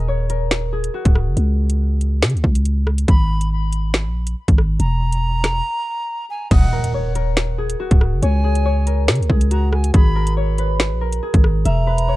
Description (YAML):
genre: hip hop, drill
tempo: 140 BPM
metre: 4/4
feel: half-time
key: Eb phrygian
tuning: A4 = 442 Hz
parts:
  - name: concert harp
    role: melody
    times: 0.0-3.4, 6.5-12.2 s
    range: Gb4 to E5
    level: -25 LUFS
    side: left 1 dB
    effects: none
  - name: growling 808-style bass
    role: bass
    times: 0.0-12.2 s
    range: Db1 to Db3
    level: -18 LUFS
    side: equal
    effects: none
  - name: drill drum kit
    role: drums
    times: 0.3-12.1 s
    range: crash cymbal, hi-hat, kick drum, rim click, snare drum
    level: -15 LUFS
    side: equal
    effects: overdrive, vintage 12-bit sampler grit
  - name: breathy reedy jazz flute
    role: second line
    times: 3.1-12.2 s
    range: Gb5 to Cb6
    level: -27 LUFS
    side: right 1 dB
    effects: ping-pong delay
  - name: impact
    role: sound effects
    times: 6.5-8.2 s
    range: none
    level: -24 LUFS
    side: equal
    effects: none
room: little or no reverb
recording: dark, warm production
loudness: -16 LUFS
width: side -17 dB against mid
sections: 0.0-6.5 A section; 6.5-12.2 B section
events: break 0.0-3.1, 5.7-6.5; impact 6.5-8.2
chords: 0.0 Ebm7; 1.4 N.C.; 3.1 Abmadd9; 4.8 N.C.; 6.5 Ebm7; 8.2 Db5; 9.9 Abmadd9; 11.7 E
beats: 0.08 0.51 0.94 | 1.37 1.80 2.23 2.65 | 3.08 3.51 3.94 4.37 | 4.80 5.22 5.65 6.08 | 6.51 6.94 7.37 7.80 | 8.22 8.65 9.08 9.51 | 9.94 10.37 10.80 11.22 | 11.65 12.08